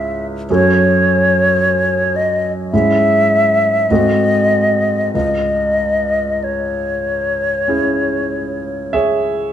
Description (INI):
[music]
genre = classical, romantic duo for flute and grand piano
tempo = 46-55 BPM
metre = 4/4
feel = rubato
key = C# minor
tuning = A4 = 439 Hz
[part]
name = concert flute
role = melody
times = 0.0-8.9 s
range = C#5 to E5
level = -15 LUFS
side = left 1 dB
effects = none
[part]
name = clear grand piano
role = accompaniment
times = 0.0-9.5 s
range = C#2 to E5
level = -17 LUFS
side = right 1 dB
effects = none
[sound]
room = moderate recital hall reverb, RT60 1.6 s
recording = close, detailed microphones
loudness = -13 LUFS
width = side -10 dB against mid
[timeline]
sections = 0.0-9.5 A section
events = none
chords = 0.5 F#m; 2.7 C#m/G#; 3.9 G#7b9; 5.1 C#m